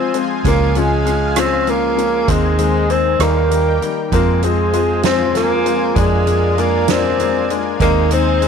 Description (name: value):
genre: six-eight pop ballad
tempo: 65 BPM (dotted quarters)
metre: 6/8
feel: straight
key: Ab major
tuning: A4 = 440 Hz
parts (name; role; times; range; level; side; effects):
- warm tenor saxophone; melody; 0.0-8.5 s; Ab3 to C4; -17 LUFS; right 1 dB; none
- clear baby grand piano; accompaniment; 0.0-8.5 s; Eb3 to Eb4; -20 LUFS; left 14 dB; none
- lush unison pad; sustained chords; 0.0-8.5 s; Eb4 to Ab5; -24 LUFS; right 1 dB; chorus, tremolo
- vintage muted fingered electric bass; bass; 0.0-8.5 s; F1 to F2; -19 LUFS; right 1 dB; none
- soft-mallet drum kit; drums; 0.1-8.5 s; hi-hat, kick drum, rim click, snare drum; -23 LUFS; right 5 dB; none
room: light reverb, studio reverb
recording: 1960s-style stereo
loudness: -13 LUFS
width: side -6 dB against mid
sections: 0.0-8.5 A section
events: none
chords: 0.5 Db; 2.3 Ab/Eb; 3.2 Eb; 4.1 Fm; 6.0 Bb7/F; 7.8 Ab/Eb